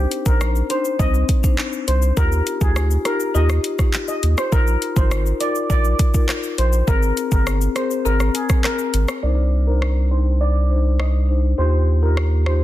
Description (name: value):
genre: dancehall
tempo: 102 BPM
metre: 4/4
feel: straight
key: C minor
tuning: A4 = 440 Hz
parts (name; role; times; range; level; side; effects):
- marimba with soft mallets; accompaniment; 0.0-12.6 s; C4 to C5; -25 LUFS; left 5 dB; low-pass filter
- saturated sub bass; bass; 0.0-12.6 s; G1 to Eb2; -17 LUFS; right 1 dB; none
- afro-pop drum kit; drums; 0.1-12.6 s; handclaps, hi-hat, kick drum, rim click, shaker; -20 LUFS; equal; soft clipping on snare
- steel pan; melody; 0.3-12.6 s; Ab4 to Eb5; -25 LUFS; equal; low-pass filter, ping-pong delay
room: little or no reverb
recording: dense, heavily limited modern master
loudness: -16 LUFS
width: side -14 dB against mid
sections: 0.0-9.2 A section; 9.2-12.6 B section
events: filter sweep 9.2-12.6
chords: 0.0 Cmadd9; 2.2 Ebadd9; 4.5 Bbsus4; 6.9 Abadd9; 9.2 Cmadd9; 11.6 Ebadd9